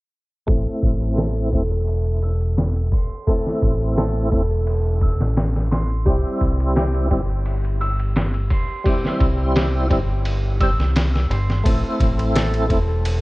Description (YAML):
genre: trip hop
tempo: 86 BPM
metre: 4/4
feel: straight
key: A minor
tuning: A4 = 440 Hz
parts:
  - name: tonewheel organ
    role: accompaniment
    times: 0.5-12.8 s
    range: G3 to G4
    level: -25 LUFS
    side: equal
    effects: overdrive, chorus vibrato, slow rotary speaker, tremolo, low-pass filter, tape echo
  - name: Celtic harp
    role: arpeggios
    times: 0.5-13.2 s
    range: G4 to E6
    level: -28 LUFS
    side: right 1 dB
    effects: vintage 12-bit sampler grit, low-pass filter, ping-pong delay
  - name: deep dub fingered electric bass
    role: bass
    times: 0.5-13.2 s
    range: E1 to C2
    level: -20 LUFS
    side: equal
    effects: tube saturation
  - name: trip hop sampler-style drum kit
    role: drums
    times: 0.5-13.2 s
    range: kick drum, ride cymbal, snare drum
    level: -22 LUFS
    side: equal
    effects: low-pass filter on cymbals, low-pass filter on kick, low-pass filter on snare
room: little or no reverb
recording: worn, warbling old tape, cassette tape, warbly pitch drift, low-pass filter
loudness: -18 LUFS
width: side -21 dB against mid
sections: 0.5-11.7 A section; 11.7-13.2 B section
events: filter sweep on tonewheel organ 0.5-11.7; filter sweep on harp 0.5-11.7, 11.7-13.2; filter sweep 0.5-11.7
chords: 0.5 Am; 6.1 C; 11.7 Am